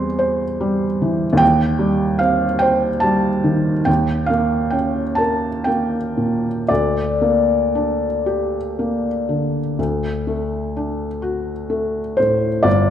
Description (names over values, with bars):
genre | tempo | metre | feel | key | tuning
classical, romantic nocturne for solo piano | 38-51 BPM (dotted quarters) | 12/8 | rubato | unclear | A4 = 440 Hz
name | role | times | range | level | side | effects
felt-muted upright piano | solo | 0.0-12.9 s | G1 to C6 | -16 LUFS | equal | none
room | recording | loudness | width
moderate scoring stage reverb, RT60 1.5 s | none | -16 LUFS | side -10 dB against mid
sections
0.0-12.7 A section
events
none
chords
0.0 C/E; 1.4 Cm/Eb; 3.9 Eb7; 6.7 Gm/D; 9.8 D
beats
0.21 | 1.42 2.62 3.88 5.21 | 6.69 8.26 9.77 11.24 | 12.66